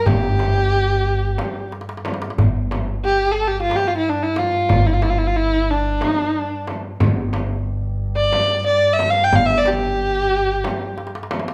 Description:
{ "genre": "Turkish makam ensemble", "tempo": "181 BPM (eighths)", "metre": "7/8", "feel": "straight", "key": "unclear", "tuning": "A4 = 440 Hz", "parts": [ { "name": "rich kamancheh", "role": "melody", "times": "0.0-11.1 s", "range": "D4 to G5", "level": "-20 LUFS", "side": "equal", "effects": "none" }, { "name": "muted double bass", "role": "drone", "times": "0.0-11.5 s", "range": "G2", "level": "-31 LUFS", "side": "equal", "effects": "none" }, { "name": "upright bass", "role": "bass", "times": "0.1-10.6 s", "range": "G1", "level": "-25 LUFS", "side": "equal", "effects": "none" }, { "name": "darbuka", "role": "percussion", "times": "0.1-11.5 s", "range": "none", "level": "-25 LUFS", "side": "equal", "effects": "none" }, { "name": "frame drum", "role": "percussion", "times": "0.1-11.5 s", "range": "none", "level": "-29 LUFS", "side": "equal", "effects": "none" } ], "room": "moderate large studio reverb, RT60 1.1 s", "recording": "band playing live in one room", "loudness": "-19 LUFS", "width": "mono", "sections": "0.0-2.4 A section; 2.4-11.5 B section", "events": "drum fill 1.7-2.4, 11.0-11.5", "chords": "none" }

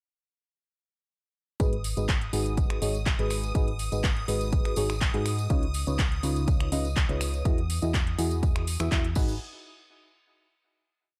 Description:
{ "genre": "piano house", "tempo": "123 BPM", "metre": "4/4", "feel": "straight", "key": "G# minor", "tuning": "A4 = 440 Hz", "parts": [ { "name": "string machine, violins", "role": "sustained chords", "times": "1.6-9.2 s", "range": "D#6", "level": "-44 LUFS", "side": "equal", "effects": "ensemble chorus, sidechain pumping" }, { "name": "barking FM electric piano", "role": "riff", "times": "1.6-9.3 s", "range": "C#3 to E5", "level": "-34 LUFS", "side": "equal", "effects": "phaser, cassette tape, sidechain pumping, low-pass filter, delay" }, { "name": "solid FM bass", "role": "bass", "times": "1.6-9.4 s", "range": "G#1 to G#2", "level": "-32 LUFS", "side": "equal", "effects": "sidechain pumping" }, { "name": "electronic kick drum", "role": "drums", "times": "1.6-9.3 s", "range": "none", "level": "-29 LUFS", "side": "equal", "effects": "small room ambience" }, { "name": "house drum kit", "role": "drums", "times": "1.6-9.3 s", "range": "crash cymbal, finger snaps, handclaps, hi-hat", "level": "-36 LUFS", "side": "equal", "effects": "small room ambience" }, { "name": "tambourine", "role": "percussion", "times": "1.6-9.4 s", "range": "none", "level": "-45 LUFS", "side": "equal", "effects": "none" } ], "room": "digital ambience", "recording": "none", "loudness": "-27 LUFS", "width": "mono", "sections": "1.6-9.4 groove; 9.4-11.2 final hit", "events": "none", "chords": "1.6 G#m7; 5.5 C#9; 7.5 Emaj9; 9.2 G#m7; 9.4 N.C." }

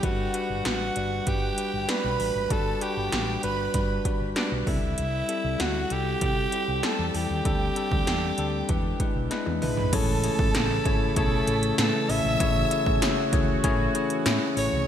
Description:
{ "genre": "1980s-style pop", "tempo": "97 BPM", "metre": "4/4", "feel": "straight", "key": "A major from 9.9 s", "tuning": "A4 = 440 Hz", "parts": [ { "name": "raspy alto saxophone", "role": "melody", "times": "0.0-14.9 s", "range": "D4 to E5", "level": "-29 LUFS", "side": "right 2 dB", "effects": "shimmer reverb, ping-pong delay" }, { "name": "rich studio violin section", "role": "second line", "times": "0.0-14.9 s", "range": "D5 to E6", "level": "-38 LUFS", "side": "right 1 dB", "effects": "shimmer reverb, ping-pong delay" }, { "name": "bell-like tine electric piano", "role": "accompaniment", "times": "0.0-14.9 s", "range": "G3 to B5", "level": "-29 LUFS", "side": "left 4 dB", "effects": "shimmer reverb" }, { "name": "woody fretless electric bass", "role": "bass", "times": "0.0-14.8 s", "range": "G1 to C3", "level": "-30 LUFS", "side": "right 1 dB", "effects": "ensemble chorus" }, { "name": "80s electronic pad drums", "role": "drums", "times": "0.0-14.7 s", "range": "crash cymbal, hi-hat, kick drum, snare drum, tambourine, toms", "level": "-28 LUFS", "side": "right 1 dB", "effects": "gated reverb on snare and toms, gated reverb" }, { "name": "sweeping resonant pad", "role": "sustained chords", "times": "9.9-14.9 s", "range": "C#3 to F#4", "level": "-32 LUFS", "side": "right 2 dB", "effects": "chorus, shimmer reverb" } ], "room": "moderate lush hall reverb, RT60 3.0 s", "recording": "bright 1980s-style digital production", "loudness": "-23 LUFS", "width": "side -9 dB against mid", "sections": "0.0-9.9 A section; 9.9-14.9 B section", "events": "tine electric piano fill 9.0-9.9; drum fill 9.3-9.9", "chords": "0.0 Gmaj7; 4.7 C6; 7.5 D7sus4; 8.7 E7; 9.9 Amaj7" }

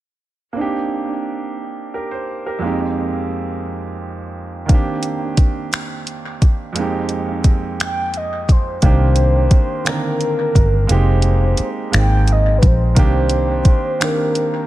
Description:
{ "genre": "slow six-eight R&B", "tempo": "58 BPM (dotted quarters)", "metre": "6/8", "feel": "straight", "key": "C minor", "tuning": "A4 = 440 Hz", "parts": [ { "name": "clear concert grand piano", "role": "accompaniment", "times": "0.5-14.7 s", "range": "F2 to C5", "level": "-22 LUFS", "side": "right 3 dB", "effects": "analog delay" }, { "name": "smooth R&B drum kit", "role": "drums", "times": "4.7-14.5 s", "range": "finger snaps, hi-hat, kick drum", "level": "-15 LUFS", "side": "equal", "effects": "vintage 12-bit sampler grit" }, { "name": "mellow horn-like synth lead", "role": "melody", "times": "7.8-14.7 s", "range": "Bb4 to G5", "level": "-22 LUFS", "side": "left 1 dB", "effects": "chorus, analog delay" }, { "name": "vintage muted fingered electric bass", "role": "bass", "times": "8.8-13.7 s", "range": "F1 to C2", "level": "-14 LUFS", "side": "equal", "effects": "none" } ], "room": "digital ambience", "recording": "echo-heavy mix", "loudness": "-15 LUFS", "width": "side -15 dB against mid", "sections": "0.6-8.8 A section; 8.8-14.7 B section", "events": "none", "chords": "0.6 Cm9; 2.6 Fm11; 4.7 Cm9; 6.8 Fm11; 8.8 Cm9; 10.9 Fm11; 13.0 Cm9" }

